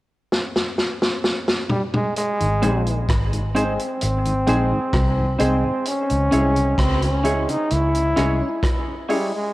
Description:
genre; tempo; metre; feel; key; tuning
dub reggae; 65 BPM; 4/4; straight; Ab major; A4 = 440 Hz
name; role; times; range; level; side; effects
vintage drum kit; drums; 0.3-9.3 s; hi-hat, kick drum, rim click, snare drum, toms; -23 LUFS; equal; cassette tape
bright trombone; melody; 1.7-9.5 s; G3 to Fb4; -23 LUFS; equal; cassette tape, dub echo
mellow tonewheel organ; accompaniment; 2.4-9.2 s; Ab2 to Fb4; -30 LUFS; left 1 dB; none
vintage muted fingered electric bass; bass; 2.4-8.4 s; Ab1 to Db2; -22 LUFS; equal; tube saturation
semi-hollow electric guitar; accompaniment; 2.6-9.3 s; C4 to Db5; -29 LUFS; right 2 dB; high-pass filter, dub echo
dark upright piano; stabs; 2.6-9.3 s; Ab3 to Ab4; -26 LUFS; left 1 dB; high-pass filter, dub echo
room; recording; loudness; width
moderate lush hall reverb, RT60 2.6 s; home recording on cassette; -18 LUFS; side -18 dB against mid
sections
0.0-2.2 A section; 2.2-9.5 B section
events
drum fill 0.3-2.2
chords
0.0 N.C.; 2.2 Ab; 5.9 Dbm

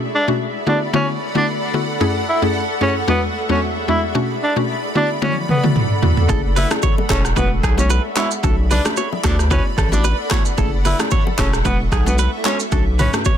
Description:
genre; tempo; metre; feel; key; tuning
afrobeats; 112 BPM; 4/4; swing 55% on 16ths; unclear; A4 = 440 Hz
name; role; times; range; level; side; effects
mallet-like synth pluck; accompaniment; 0.0-13.3 s; E2 to G#4; -22 LUFS; left 1 dB; chorus, plate reverb
granular cloud pad; sustained chords; 0.0-13.4 s; G#4 to D6; -25 LUFS; equal; built-in reverb
warm tenor saxophone; melody; 0.2-13.1 s; B3 to E4; -22 LUFS; equal; ping-pong delay, plate reverb
deep house drum kit; drums; 5.2-13.4 s; handclaps, hi-hat, kick drum, rim click, shaker, toms; -18 LUFS; equal; soft clipping on snare
direct-recorded clean electric guitar; riff; 6.3-13.4 s; G#4 to C#5; -26 LUFS; right 8 dB; ping-pong delay
saturated sub bass; bass; 6.3-13.1 s; E1 to D2; -18 LUFS; equal; none
congas and bongos; percussion; 6.3-13.4 s; none; -28 LUFS; left 7 dB; none
room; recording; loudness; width
light reverb; dense, heavily limited modern master; -15 LUFS; side -9 dB against mid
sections
0.0-13.4 A section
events
drum fill 5.2-6.3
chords
0.0 Bm7; 0.7 D6; 2.0 F#m7; 3.1 E7; 4.2 Bm7; 5.0 D6; 6.3 F#m7; 7.4 E7; 8.4 Bm7; 9.2 D6; 10.6 F#m7; 11.7 E7; 12.7 Bm7

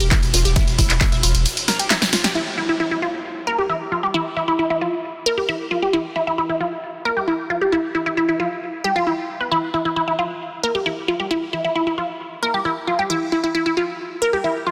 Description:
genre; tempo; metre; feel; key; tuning
driving peak-time techno; 134 BPM; 4/4; straight; E locrian; A4 = 440 Hz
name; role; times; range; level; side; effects
resonant blip pluck; riff; 0.0-14.7 s; E4 to B4; -22 LUFS; equal; phaser, tube saturation, sidechain pumping, dub echo
saturated sub bass; bass; 0.0-1.5 s; E1; -22 LUFS; equal; tube saturation, sidechain pumping, low-pass filter
punchy analog drum machine; drums; 0.0-2.3 s; handclaps, hi-hat, ride cymbal, snare drum, tambourine; -22 LUFS; equal; sidechain pumping on hats, sidechain pumping on cymbals, sidechain pumping on perc
electronic kick drum; drums; 0.1-1.1 s; none; -20 LUFS; equal; none
huge arena drum kit; drums; 0.1-2.3 s; hi-hat, snare drum; -34 LUFS; equal; sidechain pumping on hats, high-pass filter on hats, high-pass filter on snare, high-pass filter on room
room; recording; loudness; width
moderate huge ambient reverb, RT60 3.8 s; dense, heavily limited modern master; -21 LUFS; mono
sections
0.0-2.4 A section; 2.4-14.7 B section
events
drop 0.0-2.4; drum fill 1.7-2.4; band accent 2.2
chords
0.0 Em; 2.4 N.C.

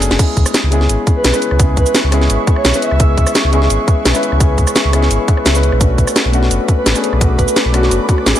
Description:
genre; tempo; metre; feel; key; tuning
liquid drum and bass; 171 BPM; 4/4; straight; unclear; A4 = 441 Hz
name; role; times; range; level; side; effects
dark concert grand piano; accompaniment; 0.0-8.4 s; G#3 to B4; -18 LUFS; left 2 dB; tape echo
sub bass with octave; bass; 0.0-8.3 s; F#1 to C#2; -14 LUFS; equal; none
garage drum kit; drums; 0.0-8.4 s; cabasa, crash cymbal, hi-hat, rim click, snare drum; -16 LUFS; equal; none
ethereal airy pad; sustained chords; 1.2-8.4 s; B4 to D6; -22 LUFS; equal; ensemble chorus, built-in reverb
electronic kick drum; drums; 0.2-8.2 s; none; -13 LUFS; equal; overdrive
breathy flute-like synth lead; melody; 1.2-3.3, 6.8-8.4 s; F#4 to E5; -20 LUFS; right 1 dB; wide subtle chorus, dub echo
room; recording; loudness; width
light reverb, digital ambience; none; -11 LUFS; side -11 dB against mid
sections
0.2-8.4 A section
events
break 0.0; drum fill 0.0; drop 0.2-8.4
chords
0.2 C#m7; 5.8 Bm7

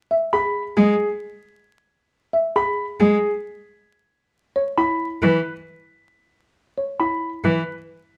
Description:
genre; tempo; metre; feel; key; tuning
classical, minimalist pattern music; 135 BPM; 5/4; straight; unclear; A4 = 440 Hz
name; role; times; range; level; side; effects
folk marimba with medium mallets; arpeggios; 0.1-7.3 s; E4 to E5; -26 LUFS; equal; none
clear grand piano; melody; 0.3-7.7 s; G#4 to B5; -24 LUFS; equal; none
clear cello; accompaniment; 0.8-7.6 s; E3 to G#3; -20 LUFS; equal; none
room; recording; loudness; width
moderate large studio reverb, RT60 0.9 s; vinyl crackle; -22 LUFS; mono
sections
0.0-8.2 A section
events
none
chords
0.0 E; 4.3 E5

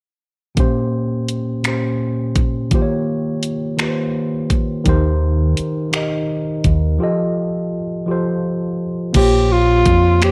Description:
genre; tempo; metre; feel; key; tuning
slow six-eight R&B; 56 BPM (dotted quarters); 6/8; straight; Bb dorian; A4 = 439 Hz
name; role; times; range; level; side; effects
tine electric piano; accompaniment; 0.5-10.3 s; Bb2 to Eb5; -22 LUFS; equal; overdrive
smooth R&B drum kit; drums; 0.6-10.3 s; crash cymbal, finger snaps, hi-hat, kick drum; -21 LUFS; equal; none
deep dub fingered electric bass; bass; 4.9-10.3 s; Bb1 to F2; -18 LUFS; equal; none
breathy tenor saxophone; melody; 9.2-10.3 s; F4 to G4; -16 LUFS; equal; slapback echo
room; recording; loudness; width
light reverb, digital ambience; none; -18 LUFS; mono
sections
0.6-9.1 A section; 9.1-10.3 B section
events
break 7.0-9.1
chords
0.6 Bbm69; 2.7 Eb7; 4.9 Cm7/Eb; 7.0 F9; 9.1 Bbm69

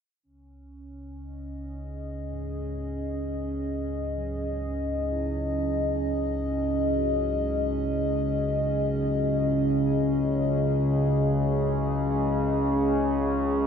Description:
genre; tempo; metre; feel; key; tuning
dark ambient drone; free time; none; none; C# minor; A4 = 439 Hz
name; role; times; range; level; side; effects
dark analog pad; sustained chords; 1.0-13.7 s; C#4 to D#5; -27 LUFS; equal; chorus
analog drone; drone; 0.6-13.7 s; C#2 to C#3; -28 LUFS; equal; chorus
bronze singing bowl; arpeggios; 2.3-12.5 s; G#2 to F#4; -42 LUFS; right 6 dB; none
room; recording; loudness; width
wet huge ambient reverb, RT60 8.8 s; none; -24 LUFS; side -7 dB against mid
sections
0.2-13.7 A section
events
none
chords
0.2 C#m

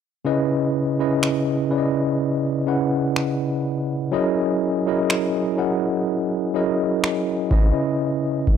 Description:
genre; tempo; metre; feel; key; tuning
contemporary R&B; 62 BPM; 4/4; swing 54% on 16ths; C# dorian; A4 = 439 Hz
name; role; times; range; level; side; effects
tine electric piano; accompaniment; 0.2-8.6 s; C#3 to F#5; -20 LUFS; equal; medium stereo tremolo
booming analog drum machine; drums; 1.2-8.6 s; finger snaps, kick drum; -20 LUFS; equal; none
room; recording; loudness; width
little or no reverb; dry, gritty hardware recording; -19 LUFS; side -8 dB against mid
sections
0.3-8.6 A section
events
none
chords
0.3 C#m7; 4.1 F#13; 7.5 C#m7

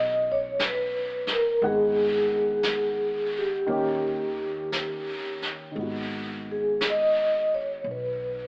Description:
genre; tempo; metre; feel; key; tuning
jazz ballad; 58 BPM; 4/4; swing 66% on 8ths; G# minor; A4 = 440 Hz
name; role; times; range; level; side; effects
vibraphone with soft mallets; melody; 0.0-8.5 s; G4 to D#5; -24 LUFS; equal; none
dark upright piano; accompaniment; 0.0-8.5 s; D#3 to F#5; -33 LUFS; equal; none
upright bass; bass; 0.0-8.5 s; G#1 to D#2; -46 LUFS; equal; none
vintage brush drum kit; drums; 0.6-8.5 s; brushed snare drum, hi-hat, snare drum; -32 LUFS; equal; none
room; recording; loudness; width
light reverb; AM radio sound; -24 LUFS; side -35 dB against mid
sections
0.0-5.8 A section; 5.8-8.5 B section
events
vibraphone solo 5.8-8.5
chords
0.0 G#m7; 3.7 D#7; 5.8 G#m7

